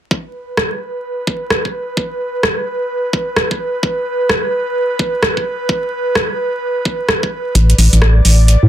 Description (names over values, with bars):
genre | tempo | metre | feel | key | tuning
UK garage, two-step garage | 129 BPM | 4/4 | swing 62% on 16ths | unclear | A4 = 440 Hz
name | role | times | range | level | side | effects
airy breathy pad | sustained chords | 0.3-8.7 s | B4 to D5 | -20 LUFS | right 2 dB | chorus, sidechain pumping
electronic kick drum | drums | 0.1-7.7 s | none | -18 LUFS | equal | high-pass filter on kick, high-pass filter on room
garage drum kit | drums | 0.6-8.6 s | hi-hat, rim click | -15 LUFS | equal | soft clipping on snare
organ-like FM bass | bass | 7.6-8.7 s | A1 to A2 | -8 LUFS | equal | none
room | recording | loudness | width
moderate studio reverb, RT60 0.5 s | dense, heavily limited modern master, vinyl crackle | -14 LUFS | side -12 dB against mid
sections
0.1-8.7 A section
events
none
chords
0.1 N.C.; 7.6 Asus4